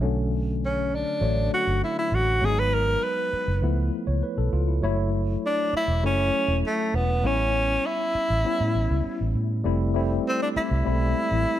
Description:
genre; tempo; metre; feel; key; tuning
lush 1970s-style soul; 100 BPM; 4/4; straight; unclear; A4 = 440 Hz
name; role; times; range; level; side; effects
barky tine electric piano; accompaniment; 0.0-11.6 s; D3 to C#5; -28 LUFS; left 2 dB; medium stereo tremolo
vintage muted fingered electric bass; bass; 0.0-11.4 s; E1 to A2; -25 LUFS; equal; none
breathy tenor saxophone; melody; 0.7-11.6 s; A3 to B4; -24 LUFS; equal; none
room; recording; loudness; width
small room ambience; none; -22 LUFS; side -12 dB against mid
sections
0.0-9.7 A section; 9.7-11.6 B section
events
none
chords
0.0 Bm7; 2.4 G#m7; 3.6 C#7alt; 4.8 F#m7; 7.2 A7; 9.7 Fmaj7

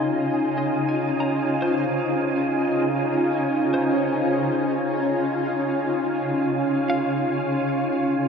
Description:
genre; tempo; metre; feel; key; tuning
ambient; 57 BPM; 3/4; straight; Db major; A4 = 440 Hz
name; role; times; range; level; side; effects
shimmering ambient pad; sustained chords; 0.0-8.3 s; Db3 to F4; -21 LUFS; equal; chorus, built-in reverb
semi-hollow electric guitar; arpeggios; 0.0-8.3 s; C5 to C6; -35 LUFS; right 1 dB; diffuse ambient delay
wind-like tuned noise texture; texture; 0.0-8.3 s; Ab5; -31 LUFS; right 2 dB; built-in reverb
room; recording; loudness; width
wet cathedral reverb, RT60 6.0 s; none; -20 LUFS; side -6 dB against mid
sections
0.0-8.3 A section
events
fade-in on clean electric guitar 0.0-8.3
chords
0.0 Dbmaj7

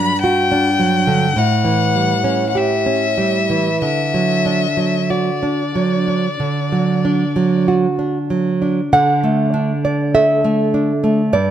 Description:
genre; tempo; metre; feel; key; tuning
romantic duo for violin and classical guitar; 46-54 BPM; 4/4; rubato; D major; A4 = 435 Hz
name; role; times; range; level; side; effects
rich violin; melody; 0.0-7.7 s; D5 to B5; -19 LUFS; left 6 dB; none
nylon-string guitar; accompaniment; 0.0-11.5 s; G2 to F#5; -15 LUFS; right 2 dB; none
room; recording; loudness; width
light reverb; none; -14 LUFS; side -10 dB against mid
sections
0.0-8.9 A section; 8.9-11.5 B section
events
none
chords
0.0 Gmaj7(no3); 1.4 A7; 3.8 D

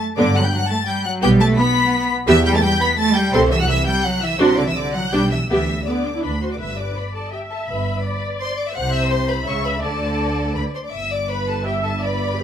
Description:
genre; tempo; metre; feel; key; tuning
quick classical-period movement for string orchestra; 168 BPM; 3/4; rubato; G major; A4 = 438 Hz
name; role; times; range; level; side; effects
clear chamber violin section; melody; 0.2-12.4 s; G5 to B6; -25 LUFS; left 2 dB; none
rich chamber violin section; second line; 0.2-12.4 s; G4 to B5; -25 LUFS; left 2 dB; none
rich studio viola section; accompaniment; 0.2-12.4 s; B3 to E5; -22 LUFS; right 1 dB; none
clear chamber double bass section; bass; 0.2-12.4 s; G1 to G2; -23 LUFS; right 2 dB; none
clear symphonic cello section; bass; 0.2-12.4 s; G2 to B3; -23 LUFS; right 1 dB; none
room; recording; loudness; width
moderate recital hall reverb, RT60 1.6 s; close, detailed microphones; -17 LUFS; side -9 dB against mid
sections
0.0-6.6 A section; 6.6-12.4 B section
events
none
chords
0.2 G; 1.2 G/B; 2.3 Em; 3.3 Am/C; 4.4 D7/C; 5.1 G/B; 5.5 G/D; 6.2 D; 6.6 G; 8.8 Cmaj7#11; 9.5 C#m7; 9.8 D5; 10.9 G

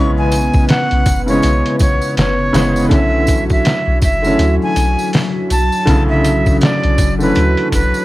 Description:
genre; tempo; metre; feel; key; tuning
trip hop; 81 BPM; 4/4; swing 60% on 16ths; B dorian; A4 = 441 Hz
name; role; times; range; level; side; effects
breathy bright jazz flute; melody; 0.0-8.0 s; B4 to C#6; -19 LUFS; equal; vintage 12-bit sampler grit, dub echo
felt-muted upright piano; accompaniment; 0.0-8.0 s; C#3 to C#4; -17 LUFS; equal; tremolo
dark analog pad; sustained chords; 0.0-8.0 s; F#3 to B4; -21 LUFS; equal; chorus
soft 808-style bass; bass; 0.0-7.9 s; F#1 to D2; -17 LUFS; equal; transformer saturation
trip hop sampler-style drum kit; drums; 0.3-7.9 s; hi-hat, kick drum, snare drum; -16 LUFS; equal; vintage 12-bit sampler grit
tambourine; percussion; 0.3-8.0 s; none; -31 LUFS; right 3 dB; none
room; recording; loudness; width
small room reverb; dry, gritty hardware recording, vinyl crackle; -11 LUFS; side -17 dB against mid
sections
0.0-8.0 A section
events
none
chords
0.0 C#m; 2.9 Bm11

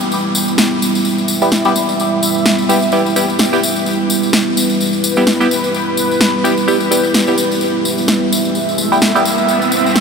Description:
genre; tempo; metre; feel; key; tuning
bass house; 128 BPM; 4/4; swing 57% on 16ths; E minor; A4 = 443 Hz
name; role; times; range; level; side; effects
sweeping resonant pad; sustained chords; 0.0-10.0 s; G3 to E5; -16 LUFS; right 1 dB; chorus
tambourine; percussion; 0.0-10.0 s; none; -21 LUFS; left 3 dB; none
electronic snare drum; drums; 0.6-10.0 s; none; -18 LUFS; equal; none
band-passed chord stab; stabs; 1.4-9.2 s; G3 to G4; -18 LUFS; equal; phaser, ping-pong delay
riser; sound effects; 8.3-10.0 s; none; -21 LUFS; right 1 dB; none
room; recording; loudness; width
wet huge ambient reverb, RT60 7.5 s; dreamy mix soaked in reverb; -12 LUFS; side -5 dB against mid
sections
0.0-10.0 A section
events
filter sweep on analog synth pad 0.0-10.0; riser 8.3-10.0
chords
0.0 Em

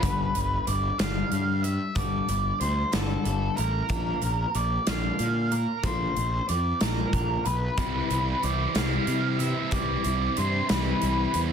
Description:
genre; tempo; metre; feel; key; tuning
quiet-loud alternative rock; 62 BPM (dotted quarters); 6/8; straight; unclear; A4 = 435 Hz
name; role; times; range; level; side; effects
octave-fuzz lead guitar; melody; 0.0-11.4 s; A4 to F5; -29 LUFS; equal; distortion
picked steel-string acoustic guitar; arpeggios; 0.0-11.5 s; G2 to Bb3; -33 LUFS; left 7 dB; none
tight distorted guitar; riff; 0.0, 7.8-11.5 s; C3 to E4; -32 LUFS; right 12 dB; distortion
fuzz picked electric bass; bass; 0.0-11.5 s; G1 to C3; -28 LUFS; equal; overdrive
big rock drum kit; drums; 0.0-11.5 s; hi-hat, kick drum, snare drum; -31 LUFS; equal; none
room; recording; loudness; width
light reverb, studio reverb; dense, heavily limited modern master; -24 LUFS; side -7 dB against mid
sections
0.0-11.5 A section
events
none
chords
0.0 G5; 3.9 Bb; 7.8 Cadd9

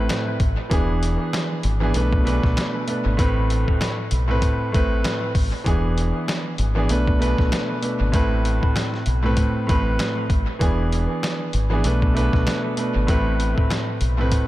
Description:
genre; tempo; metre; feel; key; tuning
hip hop, boom-bap hip-hop; 97 BPM; 4/4; swing 57% on 16ths; A harmonic minor; A4 = 437 Hz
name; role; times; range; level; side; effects
warm concert grand piano; accompaniment; 0.0-14.5 s; A2 to B4; -23 LUFS; right 1 dB; dub echo
deep dub fingered electric bass; bass; 0.0-14.3 s; E1 to B1; -22 LUFS; equal; none
trip hop sampler-style drum kit; drums; 0.1-14.5 s; hi-hat, kick drum, snare drum; -24 LUFS; equal; dub echo
room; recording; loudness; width
little or no reverb; echo-heavy mix; -19 LUFS; side -16 dB against mid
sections
0.0-14.5 A section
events
none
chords
0.0 Amadd9; 0.7 E7; 1.9 Bm7; 3.2 Amadd9; 5.7 E7; 6.9 Bm7; 8.1 Amadd9; 10.6 E7; 11.8 Bm7; 13.1 Amadd9

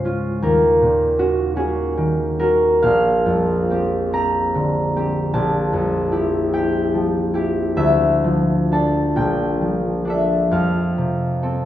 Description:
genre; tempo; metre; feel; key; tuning
classical, solo harp piece; 42-53 BPM (dotted quarters); 6/8; rubato; F major; A4 = 440 Hz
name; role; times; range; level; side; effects
concert harp; solo; 0.0-11.7 s; Bb1 to Bb5; -16 LUFS; equal; none
room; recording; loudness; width
wet recital hall reverb, RT60 1.6 s; heard from further back in the room; -16 LUFS; side -12 dB against mid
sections
0.0-11.7 A section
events
none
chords
0.4 Ebm7; 2.8 Bb69; 5.3 Fmaj9/Bb; 7.8 Dmadd9; 9.2 Bbmaj7; 10.5 Fmaj7

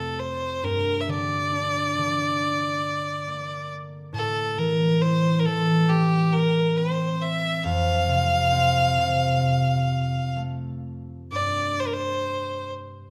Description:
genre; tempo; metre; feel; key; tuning
celtic folk, Celtic slow air; 67 BPM; 4/4; uneven beats, rubato; G dorian; A4 = 440 Hz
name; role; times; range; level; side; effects
clear fiddle; melody; 0.0-12.7 s; G4 to F5; -26 LUFS; equal; none
concert harp; accompaniment; 0.0-13.1 s; F2 to E4; -27 LUFS; equal; none
room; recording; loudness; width
moderate recital hall reverb, RT60 1.5 s; none; -24 LUFS; mono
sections
0.0-11.3 A section; 11.3-13.1 B section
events
none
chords
0.0 F; 0.6 Gm; 4.1 Am; 7.6 F; 11.3 G5

